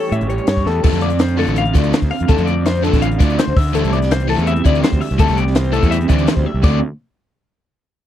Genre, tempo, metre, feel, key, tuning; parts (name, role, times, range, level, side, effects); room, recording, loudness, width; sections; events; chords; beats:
math rock and midwest emo; 166 BPM; 4/4; straight; D minor; A4 = 442 Hz
electric guitar through a small old amp; melody; 0.0-0.6 s; C#5; -32 LUFS; right 2 dB; tape echo
electric guitar through a small old amp; accompaniment; 0.0-6.8 s; D2 to G4; -24 LUFS; right 9 dB; tremolo
twelve-string electric guitar; arpeggios; 0.0-6.8 s; A4 to F5; -22 LUFS; left 7 dB; phaser
fuzz fingered electric bass; bass; 0.1-6.8 s; A1 to A2; -18 LUFS; equal; overdrive
compact cocktail drum kit; drums; 0.1-6.7 s; crash cymbal, hi-hat, kick drum, snare drum, toms; -16 LUFS; equal
crunchy overdriven guitar; riff; 0.8-6.8 s; D3 to F4; -20 LUFS; left 2 dB
little or no reverb; dry, close 1970s-style studio recording; -13 LUFS; side -11 dB against mid
0.9-6.6 A section; 6.6-8.1 B section
drum fill 0.7, 6.5
0.0 A7; 0.9 Dm7; 3.6 Am7; 6.6 Dm
0.12 0.49 | 0.85 1.21 1.58 1.94 | 2.30 2.66 3.02 3.38 | 3.75 4.11 4.47 4.83 | 5.19 5.55 5.92 6.28 | 6.64